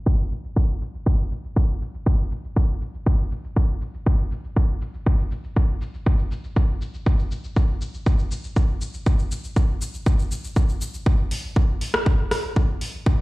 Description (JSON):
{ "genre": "house", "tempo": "120 BPM", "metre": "4/4", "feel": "straight", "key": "none", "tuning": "none", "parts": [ { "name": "deep house drum kit", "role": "drums", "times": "0.1-12.9 s", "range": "hi-hat, rim click, shaker", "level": "-28 LUFS", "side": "equal", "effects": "overdrive" }, { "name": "electronic kick drum", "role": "drums", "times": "0.1-13.2 s", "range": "none", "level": "-19 LUFS", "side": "equal", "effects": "none" } ], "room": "little or no reverb", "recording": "played on a big sound system in a bare room, large studio reverb, low-pass filter", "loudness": "-20 LUFS", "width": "side -20 dB against mid", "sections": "0.0-11.1 A section; 11.1-13.2 B section", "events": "filter sweep 0.0-11.1; build-up 11.1-13.2", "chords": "none", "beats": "0.06 0.56 | 1.06 1.56 2.06 2.56 | 3.06 3.56 4.06 4.56 | 5.06 5.56 6.06 6.56 | 7.06 7.56 8.06 8.56 | 9.06 9.56 10.06 10.56 | 11.06 11.56 12.06 12.56 | 13.06" }